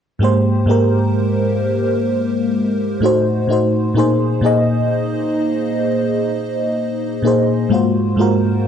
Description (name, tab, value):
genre	R&B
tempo	64 BPM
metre	4/4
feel	straight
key	Ab major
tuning	A4 = 439 Hz
part	FM electric piano with soft pad layer	solo	0.2-8.7 s	Ab2 to Eb5	-14 LUFS	equal	chorus, phaser
room	light reverb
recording	dry, gritty hardware recording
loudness	-15 LUFS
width	side -8 dB against mid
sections	0.2-8.7 A section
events	none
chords	0.2 Abmaj9; 3.0 Adim7; 4.0 Bb9sus4; 7.7 Ab13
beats	| 0.21 1.15 2.08 3.02 | 3.96 4.90 5.83 6.77 | 7.71 8.65